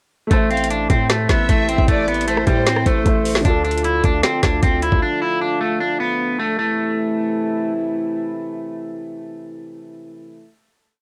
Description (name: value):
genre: hip hop, trap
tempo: 153 BPM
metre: 4/4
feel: half-time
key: A minor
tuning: A4 = 440 Hz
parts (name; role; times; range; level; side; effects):
- electric guitar at the edge of break-up; melody; 0.3-7.7 s; G3 to E4; -23 LUFS; equal; low-pass filter, cassette tape, tape echo
- clear concert grand piano; accompaniment; 0.3-6.6 s; D3 to E5; -29 LUFS; equal; low-pass filter, cassette tape
- mellow French horn section; sustained chords; 0.3-10.5 s; C3 to F4; -27 LUFS; equal; cassette tape
- hard-hitting 808-style bass; bass; 0.3-5.0 s; A1 to A2; -26 LUFS; equal; none
- trap drum kit; drums; 0.3-5.0 s; hi-hat, kick drum, rim click, snare drum; -20 LUFS; equal; cassette tape
- warm studio violin section; second line; 0.5-3.4 s; C5 to F5; -28 LUFS; equal; cassette tape
room: little or no reverb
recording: home recording on cassette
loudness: -18 LUFS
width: mono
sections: 0.3-6.6 hook; 6.6-9.7 final chord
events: none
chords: 0.3 Am; 3.4 Dm; 6.6 Am